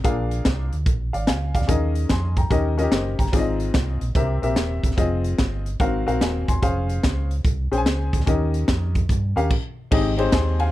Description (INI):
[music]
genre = uptempo gospel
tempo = 146 BPM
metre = 4/4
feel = swing 66% on 8ths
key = Ab major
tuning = A4 = 442 Hz
[part]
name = warm upright piano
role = accompaniment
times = 0.0-10.7 s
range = Ab2 to C6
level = -24 LUFS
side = left 3 dB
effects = none
[part]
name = fingered electric bass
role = bass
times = 0.0-10.7 s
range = Eb1 to G2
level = -24 LUFS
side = right 1 dB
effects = none
[part]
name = crisp fusion drum kit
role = drums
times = 0.0-10.7 s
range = crash cymbal, hi-hat, kick drum, ride cymbal, snare drum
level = -22 LUFS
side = equal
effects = none
[sound]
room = little or no reverb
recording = none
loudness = -19 LUFS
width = side -15 dB against mid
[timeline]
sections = 0.0-9.9 A section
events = stop 9.5-9.9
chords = 0.0 Bb7; 1.7 Eb7sus4; 2.5 Eb7; 3.3 Ab6; 4.2 C7; 5.0 Fm7; 5.8 Ab13; 6.6 Dbmaj7/F; 8.3 Eb7; 9.9 Abmaj7